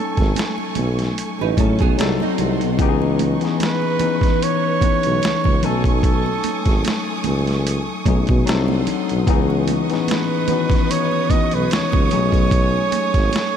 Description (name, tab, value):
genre	R&B, neo-soul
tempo	74 BPM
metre	4/4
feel	swing 55% on 16ths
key	C# minor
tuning	A4 = 441 Hz
part	warm flugelhorn	melody	0.0-13.6 s	A4 to D#5	-24 LUFS	right 5 dB	none
part	tine electric piano	accompaniment	0.0-13.6 s	D#3 to G#5	-22 LUFS	left 8 dB	overdrive, auto-pan
part	warm studio string section	sustained chords	0.0-13.6 s	A3 to D#6	-29 LUFS	right 4 dB	none
part	mellow tuba	bass	0.2-13.3 s	G#1 to B2	-21 LUFS	right 1 dB	none
part	boom bap sampler-style drum kit	drums	0.2-13.6 s	hi-hat, kick drum, snare drum	-21 LUFS	right 1 dB	none
part	congas	percussion	0.4-13.5 s	none	-31 LUFS	right 14 dB	none
part	nylon-string guitar	second line	1.4-2.8 s	Gb3 to B4	-27 LUFS	right 12 dB	ensemble chorus
room	light reverb, studio ambience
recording	none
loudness	-16 LUFS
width	side -8 dB against mid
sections	0.0-13.6 A section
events	none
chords	0.0 B13; 2.0 Cdim7; 2.8 C#m9; 5.6 B13; 8.5 Cdim7; 9.3 C#m9; 12.1 B13